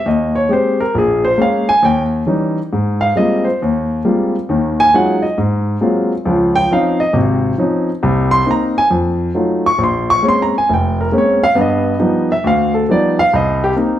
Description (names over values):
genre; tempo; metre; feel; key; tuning
jazz; 136 BPM; 4/4; swing 65% on 8ths; Ab major; A4 = 440 Hz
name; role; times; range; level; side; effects
warm grand piano; solo; 0.0-14.0 s; F1 to Db6; -12 LUFS; equal; none
room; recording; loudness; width
moderate large studio reverb, RT60 1.0 s; band playing live in one room; -12 LUFS; side -11 dB against mid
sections
0.0-2.7 A section; 2.7-14.0 A section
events
grand piano solo 0.0-14.0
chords
0.0 Abmaj7; 0.9 Bbm7; 1.8 Eb7b9; 2.7 Abmaj13; 4.5 Ebm11; 5.4 Ab13; 6.3 Dbmaj9; 8.0 Cm7; 8.9 F7b9; 9.8 Bbm9; 11.6 G7b13; 13.3 Cm7